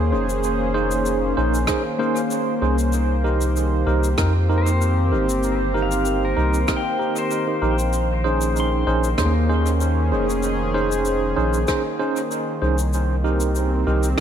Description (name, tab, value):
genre	ambient dub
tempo	96 BPM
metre	4/4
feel	swing 54% on 16ths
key	Bb dorian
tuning	A4 = 440 Hz
part	warm analog pad	sustained chords	0.0-14.2 s	Eb3 to C5	-25 LUFS	equal	chorus
part	pedal steel guitar	arpeggios	0.0-11.4 s	Bb3 to C6	-29 LUFS	left 2 dB	vintage 12-bit sampler grit, dub echo
part	soft dub sub bass	bass	0.0-14.1 s	F1 to F2	-21 LUFS	equal	none
part	tine electric piano	stabs	0.1-14.2 s	Db4 to C5	-24 LUFS	right 2 dB	fast stereo tremolo, dub echo
part	cabasa and rim click	drums	0.3-14.2 s	none	-30 LUFS	left 1 dB	dub echo
part	electronic kick drum	drums	1.7-11.8 s	none	-27 LUFS	equal	none
room	light reverb, studio ambience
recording	none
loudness	-18 LUFS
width	side -9 dB against mid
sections	0.0-14.2 A section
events	none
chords	0.0 Bbm11; 2.9 Cm7; 7.9 Bbm11; 12.9 Cm7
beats	| 0.43 1.06 1.68 2.31 | 2.93 3.56 4.18 4.81 | 5.43 6.06 6.68 7.31 | 7.93 8.56 9.18 9.81 | 10.43 11.06 11.68 12.31 | 12.93 13.56 14.18